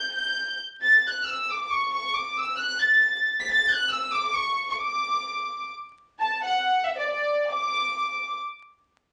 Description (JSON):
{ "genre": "mexican folk", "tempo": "135 BPM", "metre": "3/4", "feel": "swing 55% on 8ths, rubato", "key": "D major", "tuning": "A4 = 440 Hz", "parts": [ { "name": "warm studio violin section", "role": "solo", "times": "0.0-8.3 s", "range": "D5 to B6", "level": "-25 LUFS", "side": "equal", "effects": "none" } ], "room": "wet studio reverb, RT60 0.6 s", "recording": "vinyl crackle, nothing above 10.3 kHz", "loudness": "-25 LUFS", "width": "mono", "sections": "0.0-6.2 A section; 6.2-8.8 B section", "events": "none", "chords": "none" }